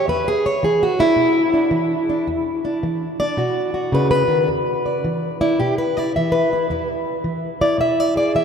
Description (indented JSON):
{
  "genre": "acoustic country blues, solo or duo",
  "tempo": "109 BPM",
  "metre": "4/4",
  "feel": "swing 65% on 8ths",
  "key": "E mixolydian",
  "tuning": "A4 = 439 Hz",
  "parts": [
    { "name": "fingerpicked plugged-in steel-string acoustic guitar", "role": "solo", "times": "0.0-8.4 s", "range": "E2 to E5", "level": "-17 LUFS", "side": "equal", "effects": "none" }
  ],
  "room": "wet cathedral reverb, RT60 5.3 s",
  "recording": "in a vast, echoing space",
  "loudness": "-17 LUFS",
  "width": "side -7 dB against mid",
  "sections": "0.0-4.5 A section; 4.5-8.4 A section",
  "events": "steel-string acoustic guitar solo 0.0-4.5, 4.5-8.4",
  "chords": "0.1 E5; 3.4 B; 4.5 E7(no3)",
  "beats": "| 0.08 0.63 1.18 1.74 | 2.29 2.84 3.39 3.94 | 4.49 5.04 5.59 6.14 | 6.69 7.24 7.79 8.34"
}